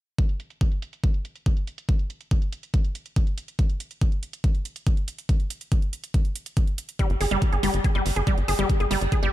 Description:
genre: psychedelic trance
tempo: 141 BPM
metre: 4/4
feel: straight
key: unclear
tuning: A4 = 439 Hz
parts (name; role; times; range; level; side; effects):
- electronic hi-hat; drums; 0.2-9.3 s; none; -38 LUFS; right 5 dB; overdrive, low-pass filter on hats, studio reverb
- electronic kick drum; drums; 0.2-9.2 s; none; -22 LUFS; equal; overdrive, studio reverb
- wide unison pluck; riff; 7.0-9.3 s; G3 to Ab4; -25 LUFS; equal; auto-pan, sidechain pumping, tape echo
- tight sequencer bass; bass; 7.1-9.3 s; G1; -26 LUFS; equal; none
room: little or no reverb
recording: none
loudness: -23 LUFS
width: side -14 dB against mid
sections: 0.2-9.3 A section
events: none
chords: none

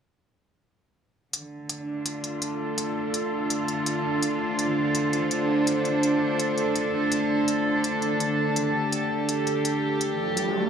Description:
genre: half-time drum and bass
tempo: 166 BPM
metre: 4/4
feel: half-time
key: D minor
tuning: A4 = 440 Hz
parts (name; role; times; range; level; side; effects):
- rich chamber cello section; sustained chords; 1.3-10.7 s; D3 to A4; -25 LUFS; right 2 dB; low-pass filter
- electronic hi-hat; drums; 1.3-10.4 s; none; -30 LUFS; left 2 dB; none
- metallic inharmonic drone; texture; 1.9-10.7 s; A3 to D5; -30 LUFS; left 4 dB; chorus, built-in reverb
- riser; sound effects; 10.1-10.7 s; none; -28 LUFS; right 2 dB; none
room: wet echo chamber reverb, RT60 1.3 s, digital ambience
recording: small room ambience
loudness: -23 LUFS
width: side -7 dB against mid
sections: 1.3-10.7 A section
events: riser 10.1-10.7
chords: 1.3 Dm

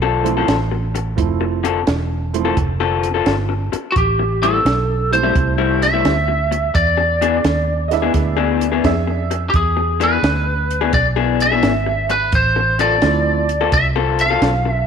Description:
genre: electric blues shuffle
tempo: 86 BPM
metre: 4/4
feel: swing 67% on 8ths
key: unclear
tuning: A4 = 440 Hz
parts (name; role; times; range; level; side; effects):
- electric guitar through a small old amp; riff; 0.0-14.7 s; A2 to A4; -20 LUFS; left 11 dB; spring reverb
- vintage muted fingered electric bass; bass; 0.0-14.9 s; E1 to F2; -20 LUFS; right 1 dB; none
- clear baby grand piano; accompaniment; 0.2-8.8, 13.0-13.5 s; F3 to E4; -24 LUFS; right 13 dB; none
- compact cocktail drum kit; drums; 0.3-14.6 s; hi-hat, kick drum, snare drum; -22 LUFS; right 1 dB; none
- lightly driven lead guitar; melody; 3.9-14.9 s; F#4 to F5; -18 LUFS; right 1 dB; slapback echo
- clear upright piano; second line; 7.9-9.4 s; G#4 to E5; -24 LUFS; right 11 dB; none
room: light reverb, small room reverb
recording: 1960s-style stereo with parts hard left and right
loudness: -14 LUFS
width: side -7 dB against mid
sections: 0.0-14.9 A section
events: none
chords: 0.0 Dm7; 4.0 Am7; 6.8 E7; 12.3 Dm7

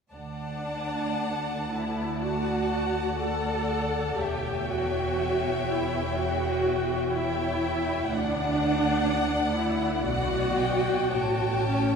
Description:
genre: classical, slow romantic movement for string orchestra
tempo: 51-64 BPM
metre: 4/4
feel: rubato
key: D major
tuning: A4 = 444 Hz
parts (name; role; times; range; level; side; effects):
- rich chamber violin section; melody; 0.1-12.0 s; F#5 to A5; -34 LUFS; left 4 dB; none
- rich chamber violin section; second line; 0.1-12.0 s; C#5 to G5; -32 LUFS; left 3 dB; none
- rich symphonic viola section; accompaniment; 0.1-12.0 s; C#4 to A4; -28 LUFS; right 1 dB; none
- clear studio cello section; bass; 0.1-12.0 s; D2 to B2; -33 LUFS; right 2 dB; none
- rich chamber double bass section; bass; 0.1-12.0 s; E1 to D2; -34 LUFS; right 1 dB; none
room: wet cathedral reverb, RT60 4.6 s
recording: recorded in a church or concert hall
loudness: -25 LUFS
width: side -6 dB against mid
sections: 0.1-12.0 A section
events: none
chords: 0.1 D; 4.2 C#dim/E; 8.1 D; 10.1 Bm; 11.1 A7

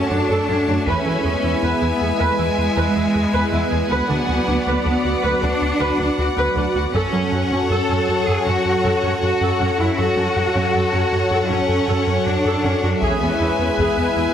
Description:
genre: cinematic, hybrid orchestral and electronic film score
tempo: 79 BPM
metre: 4/4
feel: straight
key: F# minor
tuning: A4 = 440 Hz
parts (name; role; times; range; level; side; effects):
- clear studio violin section; second line; 0.0-14.3 s; C#5 to A5; -26 LUFS; left 4 dB; none
- mellow French horn section; sustained chords; 0.0-14.3 s; F#4 to E5; -26 LUFS; left 2 dB; none
- phased analog pad; sustained chords; 0.0-14.3 s; F#3 to C#5; -24 LUFS; equal; phaser, chorus
- round analog bass; riff; 0.0-14.3 s; D2 to F#3; -25 LUFS; right 1 dB; none
- rich symphonic cello section; bass; 0.0-14.3 s; G#3 to A4; -23 LUFS; equal; none
- rich symphonic viola section; accompaniment; 0.1-14.3 s; B3 to D5; -24 LUFS; equal; none
- rich symphonic double bass section; bass; 0.1-14.2 s; D2 to F#2; -27 LUFS; right 2 dB; none
- taiko ensemble; drums; 0.9-2.3, 6.9-8.4, 13.0-14.3 s; none; -30 LUFS; left 1 dB; none
room: moderate scoring stage reverb, RT60 1.8 s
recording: heavily compressed radio sound, multiband compression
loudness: -16 LUFS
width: side -9 dB against mid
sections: 0.0-14.3 A section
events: none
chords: 0.0 F#m; 0.9 E; 3.9 Bm/D; 6.9 F#m; 13.0 E

